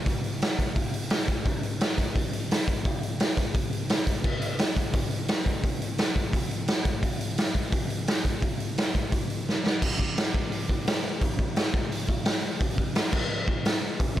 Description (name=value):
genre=punk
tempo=172 BPM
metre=4/4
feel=straight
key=none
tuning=none
part: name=raw garage drum kit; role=drums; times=0.1-14.2 s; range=crash cymbal, hi-hat, kick drum, snare drum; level=-24 LUFS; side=equal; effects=none
room=little or no reverb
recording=none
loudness=-25 LUFS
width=side -12 dB against mid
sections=0.0-9.8 A section; 9.8-14.2 B section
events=drum fill 9.5-9.8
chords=none